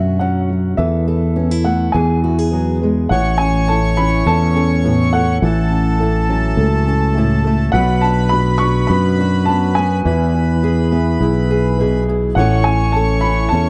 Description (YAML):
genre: acoustic folk duo or small band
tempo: 104 BPM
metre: 4/4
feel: straight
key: A major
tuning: A4 = 440 Hz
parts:
  - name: dark upright piano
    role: melody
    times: 0.0-13.7 s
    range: E5 to C#6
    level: -23 LUFS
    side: equal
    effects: analog delay
  - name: fingerpicked steel-string acoustic guitar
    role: accompaniment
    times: 0.0-13.7 s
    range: F#2 to A4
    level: -23 LUFS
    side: equal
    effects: none
  - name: felt-muted upright piano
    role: arpeggios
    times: 0.0-13.7 s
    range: E3 to A4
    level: -26 LUFS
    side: equal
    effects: none
  - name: fretless electric bass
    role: bass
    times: 0.0-13.7 s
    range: A1 to F#2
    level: -18 LUFS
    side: equal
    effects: none
  - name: accordion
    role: second line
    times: 3.1-13.7 s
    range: A4 to C#5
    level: -25 LUFS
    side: equal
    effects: none
room: light reverb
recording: dark, warm production, nothing above 10.3 kHz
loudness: -16 LUFS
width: mono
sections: 0.0-3.1 A section; 3.1-13.7 B section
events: none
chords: 0.0 Bmadd9; 0.8 Esus4; 1.9 E; 3.1 Aadd9; 5.4 F#m7/A; 7.7 Bm; 10.0 E; 12.4 Aadd9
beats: 0.21 | 0.79 1.37 1.95 2.52 | 3.10 3.68 4.26 4.84 | 5.42 6.00 6.58 7.16 | 7.73 8.31 8.89 9.47 | 10.05 10.63 11.21 11.79 | 12.36 12.94 13.52